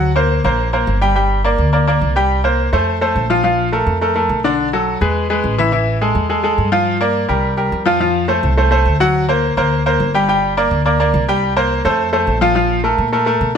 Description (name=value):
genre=latin, salsa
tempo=210 BPM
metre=4/4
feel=straight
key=F major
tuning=A4 = 440 Hz
part: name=bright grand piano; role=accompaniment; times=0.0-13.6 s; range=D3 to G5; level=-15 LUFS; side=equal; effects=none
part: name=upright bass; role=bass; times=0.0-13.6 s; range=G1 to B2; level=-18 LUFS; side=equal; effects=none
room=light reverb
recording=close, detailed microphones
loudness=-13 LUFS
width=side -7 dB against mid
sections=0.0-8.0 A section; 8.0-13.6 A section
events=none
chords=0.0 Daug7; 1.2 Gm; 2.3 C5; 2.9 F; 3.4 Bbmaj7; 4.6 Bm7; 5.2 E; 5.7 A5; 6.9 Gm7; 7.4 C5; 8.0 F6; 9.1 Daug7; 10.3 Gm; 11.4 C5; 12.0 F; 12.6 Bbmaj7(no3)